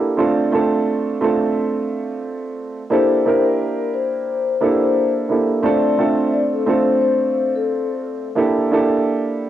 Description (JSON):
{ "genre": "hip hop", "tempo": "88 BPM", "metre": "4/4", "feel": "swing 59% on 16ths", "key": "unclear", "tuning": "A4 = 440 Hz", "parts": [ { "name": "dark concert grand piano", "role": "accompaniment", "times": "0.0-9.5 s", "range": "A3 to Bb4", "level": "-17 LUFS", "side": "right 3 dB", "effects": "high-pass filter, low-pass filter, cassette tape" }, { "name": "vibraphone with soft mallets", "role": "melody", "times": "2.9-7.9 s", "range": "A4 to E5", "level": "-20 LUFS", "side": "left 7 dB", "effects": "high-pass filter, low-pass filter, cassette tape, analog delay" } ], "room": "moderate spring reverb, RT60 1.3 s, studio ambience", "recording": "home recording on cassette", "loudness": "-16 LUFS", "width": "side -12 dB against mid", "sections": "0.0-9.5 A section", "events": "none", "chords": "0.2 F6; 2.9 Gm69; 5.6 F6; 8.4 Gm69", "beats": "| 0.19 0.88 1.56 2.24 | 2.92 3.60 4.29 4.97 | 5.65 6.33 7.01 7.69 | 8.38 9.06" }